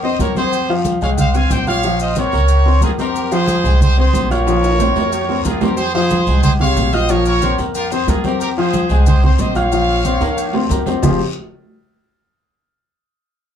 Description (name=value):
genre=latin, salsa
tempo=183 BPM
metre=4/4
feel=straight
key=F minor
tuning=A4 = 440 Hz
part: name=brilliant trumpet section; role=melody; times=0.0-10.7 s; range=F4 to Ab5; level=-20 LUFS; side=right 1 dB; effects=none
part: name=warm upright piano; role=accompaniment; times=0.0-11.2 s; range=C3 to F6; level=-19 LUFS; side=left 3 dB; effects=none
part: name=upright bass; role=bass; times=0.0-11.2 s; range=F1 to F2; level=-17 LUFS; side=equal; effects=none
part: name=congas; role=percussion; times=0.0-11.1 s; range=none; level=-22 LUFS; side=right 1 dB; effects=none
part: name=guiro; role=percussion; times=0.2-11.1 s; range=none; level=-35 LUFS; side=left 6 dB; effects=none
part: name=maracas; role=percussion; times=0.2-11.1 s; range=none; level=-33 LUFS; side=left 5 dB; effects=none
part: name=timbales and agogo bells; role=percussion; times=0.2-11.1 s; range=none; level=-24 LUFS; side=right 4 dB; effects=none
room=wet small room ambience, RT60 0.5 s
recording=heard from further back in the room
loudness=-13 LUFS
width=side -9 dB against mid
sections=0.0-5.8 A section; 5.8-11.0 B section; 11.0-12.3 C section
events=drum fill 4.5-5.8, 10.2-11.0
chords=0.0 Bbmadd9; 3.2 Fm; 4.5 Bbmadd9; 5.8 Fm; 7.1 Bbmadd9; 8.4 Fm; 9.7 Bbmadd9; 11.0 Fmadd9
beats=0.19 | 0.52 0.85 1.18 1.51 | 1.84 2.17 2.50 2.83 | 3.15 3.48 3.81 4.14 | 4.47 4.80 5.12 5.45 | 5.78 6.11 6.44 6.77 | 7.09 7.42 7.75 8.08 | 8.41 8.73 9.06 9.39 | 9.72 10.05 10.37 10.70 | 11.03